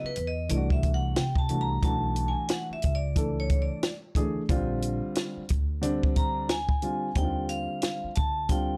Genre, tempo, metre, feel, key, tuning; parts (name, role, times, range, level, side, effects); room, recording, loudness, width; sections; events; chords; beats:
hip hop, jazz-hop; 90 BPM; 4/4; swing 61% on 16ths; A4 = 440 Hz
vibraphone with hard mallets; melody; 0.0-8.8 s; B4 to A#5; -35 LUFS; equal
dark baby grand piano; accompaniment; 0.0-8.8 s; D3 to A4; -34 LUFS; equal
upright bass; bass; 0.0-8.8 s; A#1 to C3; -34 LUFS; equal; tube saturation
compact cocktail drum kit; drums; 0.2-8.7 s; hi-hat, kick drum, snare drum; -30 LUFS; equal
small room ambience; dry, gritty hardware recording, transformer saturation, cassette tape; -28 LUFS; mono
0.0-8.8 A section
vibraphone solo 0.0-8.8
0.5 Cadd9; 1.8 Bm7; 4.5 A#7; 7.2 D#maj9
0.49 1.16 | 1.83 2.49 3.16 3.83 | 4.49 5.16 5.83 6.49 | 7.16 7.83 8.49